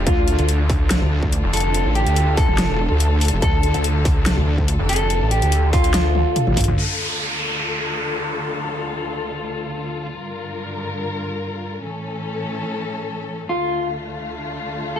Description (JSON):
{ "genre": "heavy wobble dubstep", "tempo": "143 BPM", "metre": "4/4", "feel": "half-time", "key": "D harmonic minor", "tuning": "A4 = 440 Hz", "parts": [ { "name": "dark symphonic string section", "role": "sustained chords", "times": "0.0-15.0 s", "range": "D2 to Bb4", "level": "-26 LUFS", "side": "left 2 dB", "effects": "sidechain pumping, low-pass filter" }, { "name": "snarling distorted saw bass", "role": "bass", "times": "0.0-6.8 s", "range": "F1 to D2", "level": "-19 LUFS", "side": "equal", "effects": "distortion, overdrive" }, { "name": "electric guitar at the edge of break-up", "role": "melody", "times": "0.1-6.7, 13.5-15.0 s", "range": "F4 to A4", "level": "-23 LUFS", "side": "equal", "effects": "vintage 12-bit sampler grit, dub echo" }, { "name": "wobble bass", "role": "bass", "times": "0.1-6.7 s", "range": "E1 to D2", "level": "-19 LUFS", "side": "equal", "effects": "chorus, overdrive" }, { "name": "dubstep drum kit", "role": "drums", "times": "0.1-6.9 s", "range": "crash cymbal, hi-hat, snare drum, toms", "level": "-24 LUFS", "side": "left 1 dB", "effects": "low-pass filter on hats, low-pass filter on cymbals, low-pass filter on snare, low-pass filter on toms" }, { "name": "electronic kick drum", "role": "drums", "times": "0.1-6.7 s", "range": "none", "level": "-20 LUFS", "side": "equal", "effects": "distortion" }, { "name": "downlifter", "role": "sound effects", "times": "6.8-10.1 s", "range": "none", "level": "-25 LUFS", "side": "right 1 dB", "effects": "none" } ], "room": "digital ambience", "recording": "none", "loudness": "-18 LUFS", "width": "side -10 dB against mid", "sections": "0.0-6.8 A section; 6.8-15.0 B section", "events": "drop 0.0-6.8; drum fill 6.2-6.8", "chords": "0.0 Dm; 10.1 Gm7; 11.8 A; 13.5 Dm" }